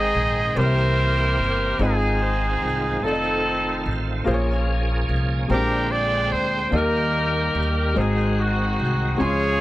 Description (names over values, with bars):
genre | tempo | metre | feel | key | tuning
slow gospel | 49 BPM (dotted quarters) | 6/8 | straight | Ab major | A4 = 438 Hz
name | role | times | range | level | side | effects
clear trumpet | melody | 0.0-9.6 s | Ab4 to Eb5 | -24 LUFS | right 2 dB | none
warm saxophone section | melody | 0.0-9.6 s | C4 to C5 | -26 LUFS | left 2 dB | tape echo
warm concert grand piano | accompaniment | 0.0-9.6 s | Ab2 to C6 | -26 LUFS | left 2 dB | none
bright tonewheel organ | sustained chords | 0.0-9.6 s | D3 to G5 | -29 LUFS | right 2 dB | fast rotary speaker, overdrive, chorus vibrato
upright bass | bass | 0.0-9.6 s | F1 to Eb2 | -24 LUFS | equal | none
room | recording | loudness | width
light reverb | none | -19 LUFS | side -16 dB against mid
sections
0.0-9.6 A section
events
none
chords
0.0 Abmaj7; 0.6 C7; 1.8 Fm7/Ab; 3.0 F7; 4.3 Bbm7; 5.5 Bb13; 6.7 Eb; 8.0 Ab7